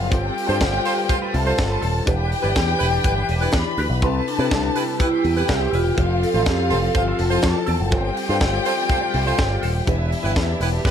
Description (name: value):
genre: disco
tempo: 123 BPM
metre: 4/4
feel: straight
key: unclear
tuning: A4 = 444 Hz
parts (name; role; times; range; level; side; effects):
- warm studio violin section; second line; 0.0-10.9 s; D4 to B5; -25 LUFS; left 2 dB; none
- clean electric guitar; accompaniment; 0.0-10.9 s; C4 to D5; -32 LUFS; right 4 dB; wah, tremolo
- mellow tine electric piano; accompaniment; 0.0-10.9 s; C3 to D5; -28 LUFS; left 2 dB; medium stereo tremolo
- warm studio string section; sustained chords; 0.0-10.9 s; C3 to B4; -31 LUFS; left 4 dB; none
- picked electric bass with an envelope filter; bass; 0.0-10.9 s; Eb1 to C3; -22 LUFS; equal; none
- tight funk drum kit; drums; 0.1-10.9 s; hi-hat, kick drum, snare drum; -24 LUFS; equal; none
- warm horn section; stabs; 0.5-10.9 s; E4 to C5; -26 LUFS; right 2 dB; none
- vibraphone with soft mallets; melody; 4.0-7.7 s; C4 to A4; -24 LUFS; right 1 dB; tape echo
room: light reverb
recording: none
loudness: -18 LUFS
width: side -8 dB against mid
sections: 0.0-10.9 A section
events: none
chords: 0.1 G9sus4; 2.1 Em7; 4.0 Cmaj7; 6.0 Fmaj7; 7.9 G9sus4; 9.9 Em7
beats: | 0.12 0.60 1.09 1.58 | 2.07 2.56 3.05 3.54 | 4.02 4.51 5.00 5.49 | 5.97 6.46 6.95 7.44 | 7.93 8.41 8.90 9.39 | 9.88 10.37 10.85